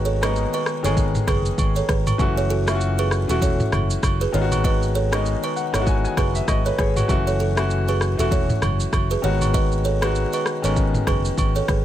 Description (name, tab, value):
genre	afrobeats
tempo	98 BPM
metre	4/4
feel	swing 58% on 16ths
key	unclear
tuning	A4 = 440 Hz
part	clear baby grand piano	accompaniment	0.0-11.8 s	D#3 to G#5	-25 LUFS	left 5 dB	none
part	fingered electric bass	bass	0.0-11.8 s	E1 to G#1	-23 LUFS	equal	none
part	buzzing kalimba	riff	0.1-11.8 s	F#4 to D#5	-26 LUFS	right 6 dB	ping-pong delay
part	afro-pop drum kit	drums	0.1-11.8 s	kick drum, rim click, shaker, toms	-24 LUFS	equal	vintage 12-bit sampler grit
part	agogo bells	percussion	0.2-11.5 s	none	-31 LUFS	right 6 dB	none
room	small room ambience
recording	none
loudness	-18 LUFS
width	side -12 dB against mid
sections	0.0-11.8 A section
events	grand piano fill 5.3-7.1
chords	0.0 G#m7; 2.2 F#m7; 4.3 G#m7; 7.1 F#m7; 9.2 G#m7